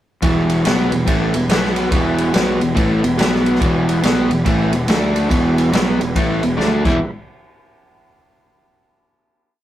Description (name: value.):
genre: blues rock power trio and southern rock.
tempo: 142 BPM.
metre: 4/4.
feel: swing 64% on 8ths.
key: E minor.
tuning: A4 = 439 Hz.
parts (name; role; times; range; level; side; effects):
overdriven tonewheel organ; sustained chords; 0.2-7.1 s; G3 to B4; -29 LUFS; right 2 dB; none.
overdriven electric guitar; riff; 0.2-7.0 s; E2 to E4; -17 LUFS; equal; none.
fuzz fingered electric bass; bass; 0.2-7.0 s; E1 to D2; -21 LUFS; equal; overdrive.
vintage drum kit; drums; 0.2-6.9 s; crash cymbal, kick drum, ride cymbal, snare drum; -19 LUFS; equal; none.
room: light reverb.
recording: rough rehearsal-room recording.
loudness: -14 LUFS.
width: side -12 dB against mid.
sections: 0.2-7.0 riff; 7.0-8.7 final hit.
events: drum fill 6.6-7.0.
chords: 0.2 Em; 1.5 B5; 1.9 Em; 3.2 B5; 3.6 Em; 4.9 D5; 5.3 Em; 6.6 D5; 6.8 Em.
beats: | 0.22 0.65 1.07 1.49 | 1.91 2.33 2.76 3.18 | 3.60 4.03 4.45 4.88 | 5.30 5.73 6.15 6.58 | 7.00.